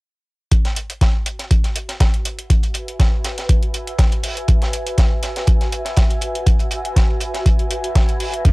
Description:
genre	acid house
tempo	121 BPM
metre	4/4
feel	swing 54% on 16ths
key	unclear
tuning	A4 = 442 Hz
part	deep reggae drum kit	drums	0.5-8.5 s	hi-hat, snare drum	-28 LUFS	right 1 dB	sidechain pumping on hats, high-pass filter on hats, cassette tape, high-pass filter on snare, high-pass filter on room
part	electronic hi-hat	drums	0.5-8.5 s	none	-28 LUFS	equal	cassette tape
part	electronic kick drum	drums	0.5-8.5 s	none	-15 LUFS	equal	cassette tape
part	granular cloud pad	texture	1.9-8.5 s	F#4 to G#5	-27 LUFS	equal	built-in reverb, sidechain pumping, cassette tape
part	liquid acid bass	riff	8.4-8.5 s	F#2	-15 LUFS	equal	chorus, overdrive, cassette tape
room	little or no reverb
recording	home recording on cassette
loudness	-16 LUFS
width	side -23 dB against mid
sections	0.5-8.5 A section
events	fade-in on ambient pad 0.5-8.5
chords	0.5 F#7(no3)

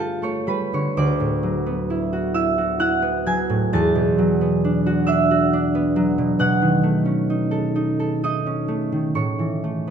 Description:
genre	classical, solo harp piece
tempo	66 BPM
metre	3/4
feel	uneven beats, rubato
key	unclear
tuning	A4 = 440 Hz
part	concert harp	solo	0.0-9.9 s	D2 to A6	-18 LUFS	right 1 dB	none
room	wet recital hall reverb, RT60 1.4 s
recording	none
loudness	-18 LUFS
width	side -7 dB against mid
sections	0.0-9.9 A section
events	none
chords	0.0 G9; 0.9 D69; 3.7 E11; 6.4 B9; 9.1 Aadd9

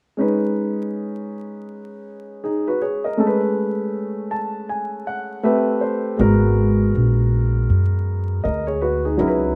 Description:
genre	hip hop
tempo	80 BPM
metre	4/4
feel	swing 61% on 16ths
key	B major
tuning	A4 = 440 Hz
part	dark baby grand piano	accompaniment	0.2-9.6 s	F#3 to A5	-23 LUFS	equal	none
part	upright bass	bass	6.2-9.6 s	G#1 to F#2	-20 LUFS	equal	none
room	moderate stone room reverb, RT60 1.2 s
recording	band playing live in one room, vinyl crackle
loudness	-20 LUFS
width	mono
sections	0.2-9.6 A section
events	grand piano fill 3.9-6.2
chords	0.2 B69; 3.2 Amaj9; 5.4 Am9; 6.2 G#m9

